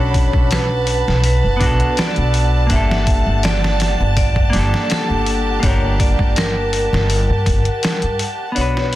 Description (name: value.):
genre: trip hop.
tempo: 82 BPM.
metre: 4/4.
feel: straight.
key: unclear.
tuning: A4 = 440 Hz.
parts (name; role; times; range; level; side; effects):
vibraphone with hard mallets; melody; 0.0-9.0 s; A4 to E5; -23 LUFS; equal; vintage 12-bit sampler grit, dub echo.
clean electric guitar; accompaniment; 0.0-9.0 s; Bb3 to B4; -23 LUFS; equal; harmonic tremolo, tape echo.
rich chamber violin section; sustained chords; 0.0-9.0 s; G4 to B5; -26 LUFS; right 3 dB; low-pass filter.
upright bass; bass; 0.0-9.0 s; F#1 to G2; -18 LUFS; equal; none.
wind-like tuned noise texture; texture; 0.0-9.0 s; F#5; -30 LUFS; left 3 dB; built-in reverb.
trip hop sampler-style drum kit; drums; 0.1-9.0 s; hi-hat, kick drum, snare drum; -19 LUFS; equal; high-pass filter on hats, high-pass filter on snare, high-pass filter on kick.
room: studio ambience.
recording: dense, heavily limited modern master.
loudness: -14 LUFS.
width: side -15 dB against mid.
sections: 0.0-8.6 A section.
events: none.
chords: 0.0 Bm7; 2.7 Gmadd9.